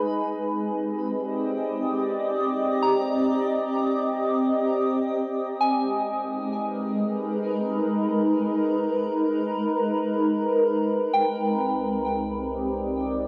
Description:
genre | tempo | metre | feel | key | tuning
ambient | free time | none | none | unclear | A4 = 443 Hz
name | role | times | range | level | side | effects
shimmering ambient pad | sustained chords | 0.0-13.3 s | Ab3 to Eb5 | -26 LUFS | equal | chorus, built-in reverb, phaser
soft synth bell | arpeggios | 0.0-13.3 s | G5 to Cb6 | -33 LUFS | equal | chorus, diffuse ambient delay
round analog bass | bass | 11.1-13.3 s | C2 | -45 LUFS | equal | none
room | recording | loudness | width
wet cathedral reverb, RT60 5.8 s | in a vast, echoing space | -25 LUFS | mono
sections
0.0-11.1 A section; 11.1-13.3 A section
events
filter sweep on ambient pad 11.1-13.3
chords
0.1 Cm7; 5.6 Abm; 11.1 Cm7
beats
free time

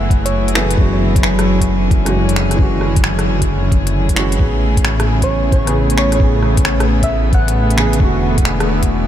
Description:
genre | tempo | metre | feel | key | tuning
future garage | 133 BPM | 4/4 | swing 67% on 16ths | unclear | A4 = 440 Hz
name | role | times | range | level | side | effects
felt-muted upright piano | accompaniment | 0.0-9.1 s | C#3 to G#4 | -21 LUFS | right 2 dB | sidechain pumping, tape echo
rich chamber string section | sustained chords | 0.0-9.1 s | C#3 to G#4 | -19 LUFS | left 1 dB | sidechain pumping
dark detuned saw bass | bass | 0.0-9.1 s | E1 to A1 | -17 LUFS | equal | sidechain pumping
electronic kick drum | drums | 0.1-8.9 s | none | -14 LUFS | equal | overdrive
organic electronic drum kit | drums | 0.1-8.9 s | finger snaps, hi-hat, rim click | -22 LUFS | left 1 dB | none
soft struck synth lead | melody | 0.3-0.6, 5.2-7.8 s | C#5 to F#5 | -24 LUFS | equal | chorus, tape echo
room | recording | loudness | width
moderate huge ambient reverb, RT60 7.9 s | dreamy mix soaked in reverb | -12 LUFS | side -11 dB against mid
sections
0.0-9.1 A section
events
none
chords
0.0 F#m11; 0.8 Dmaj9#11/F#; 4.4 Amaj9; 8.0 E9sus4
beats
0.34 | 0.79 1.24 1.69 2.14 | 2.59 3.04 3.49 3.94 | 4.39 4.85 5.30 5.75 | 6.20 6.65 7.10 7.55 | 8.00 8.46 8.91

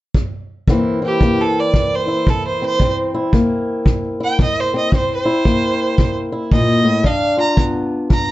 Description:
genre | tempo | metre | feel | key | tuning
acoustic country blues, solo or duo | 113 BPM | 4/4 | swing 62% on 8ths | C mixolydian | A4 = 439 Hz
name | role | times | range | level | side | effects
kick drum | drums | 0.1-8.3 s | none | -17 LUFS | equal | none
fingerpicked old ladder-braced acoustic guitar | accompaniment | 0.7-8.3 s | G2 to F4 | -18 LUFS | left 1 dB | none
rich fiddle | melody | 1.1-8.3 s | G4 to Bb5 | -19 LUFS | right 2 dB | none
room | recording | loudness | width
moderate studio reverb, RT60 0.6 s | dark, warm production, nothing above 7.8 kHz | -14 LUFS | side -16 dB against mid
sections
0.7-8.3 A section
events
none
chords
0.0 N.C.; 0.7 C7; 7.1 G7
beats
0.15 | 0.68 1.22 1.75 2.28 | 2.81 3.34 3.87 4.40 | 4.93 5.46 5.99 6.52 | 7.05 7.58 8.11

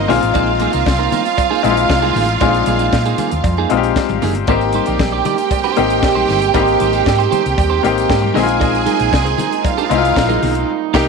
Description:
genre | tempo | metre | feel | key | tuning
disco | 116 BPM | 4/4 | straight | unclear | A4 = 442 Hz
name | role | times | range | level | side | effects
clear studio violin section | second line | 0.0-11.1 s | F4 to Ab5 | -20 LUFS | right 13 dB | none
bright grand piano | accompaniment | 0.0-11.1 s | Ab3 to G4 | -18 LUFS | left 12 dB | none
hollow-body short-scale fingered electric bass | bass | 0.0-11.1 s | F#1 to Bb2 | -20 LUFS | equal | none
clean electric guitar | accompaniment | 0.1-11.1 s | Bb3 to D5 | -22 LUFS | right 15 dB | none
tight funk drum kit | drums | 0.1-11.1 s | crash cymbal, hi-hat, kick drum, snare drum | -21 LUFS | left 2 dB | none
congas | percussion | 0.1-10.5 s | none | -28 LUFS | left 8 dB | none
cowbell | percussion | 0.3-10.3 s | none | -27 LUFS | right 14 dB | none
warm French horn section | sustained chords | 4.5-11.1 s | C3 to G4 | -21 LUFS | right 15 dB | none
room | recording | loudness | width
light reverb, small room ambience | 1960s-style stereo with parts hard left and right | -13 LUFS | side -4 dB against mid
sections
0.0-11.1 A section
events
drum fill 10.7-11.1; band accent 10.7-11.1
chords
0.1 Bb7sus4; 4.5 Abmaj7; 8.4 Bb7sus4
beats
| 0.35 0.86 1.38 1.90 | 2.41 2.93 3.45 3.96 | 4.48 5.00 5.51 6.03 | 6.54 7.06 7.58 8.10 | 8.61 9.13 9.65 10.16 | 10.68

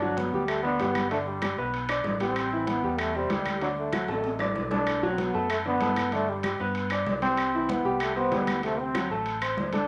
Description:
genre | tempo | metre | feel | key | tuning
latin, salsa | 192 BPM | 4/4 | straight | G major | A4 = 439 Hz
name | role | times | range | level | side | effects
clear trombone | melody | 0.0-9.9 s | F#3 to D4 | -31 LUFS | equal | none
clear grand piano | accompaniment | 0.0-9.9 s | C3 to D5 | -32 LUFS | equal | none
fingered electric bass | bass | 0.0-9.9 s | G1 to G2 | -39 LUFS | equal | none
congas | percussion | 0.0-9.9 s | none | -39 LUFS | equal | none
timbales | percussion | 0.2-9.9 s | none | -36 LUFS | equal | none
claves | percussion | 0.5-9.6 s | none | -39 LUFS | equal | none
room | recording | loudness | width
moderate large studio reverb, RT60 1.1 s | none | -27 LUFS | mono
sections
0.0-9.9 A section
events
drum fill 4.1-4.9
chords
0.0 Gmaj7; 1.1 A9sus4; 2.4 Am7; 3.6 D; 4.9 Bm7; 6.1 G; 7.4 Cmaj7; 8.6 D7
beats
0.17 0.49 0.80 | 1.11 1.43 1.74 2.05 | 2.36 2.68 2.99 3.30 | 3.62 3.93 4.24 4.56 | 4.87 5.18 5.50 5.81 | 6.12 6.44 6.75 7.07 | 7.38 7.69 8.01 8.32 | 8.63 8.95 9.26 9.57

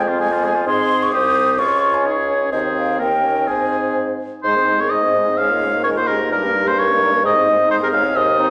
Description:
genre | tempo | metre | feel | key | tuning
quick classical-period movement for wind quintet | 129 BPM | 2/4 | straight | Ab major | A4 = 441 Hz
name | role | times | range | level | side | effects
mellow hollow concert flute | melody | 0.0-8.5 s | G4 to Eb6 | -23 LUFS | equal | none
clear oboe | second line | 0.0-8.5 s | F4 to F5 | -21 LUFS | equal | none
dark clarinet | accompaniment | 0.0-8.5 s | Db4 to Db5 | -27 LUFS | equal | none
warm French horn | accompaniment | 0.0-8.5 s | G3 to Eb4 | -29 LUFS | equal | none
mellow bassoon | bass | 0.0-8.5 s | C2 to Ab2 | -25 LUFS | equal | none
room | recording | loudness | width
wet recital hall reverb, RT60 1.3 s | none | -17 LUFS | mono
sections
0.0-4.4 A section; 4.4-8.5 B section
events
none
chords
0.0 Fm; 0.7 Ab; 1.6 Db; 2.5 Ab/Eb; 3.0 Eb7; 3.5 Ab; 5.4 Bbm7/Ab; 6.3 Eb7/G; 7.2 Ab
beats
0.20 | 0.66 1.12 | 1.59 2.06 | 2.52 3.00 | 3.47 3.95 | 4.43 4.91 | 5.38 5.84 | 6.31 6.78 | 7.24 7.70 | 8.16

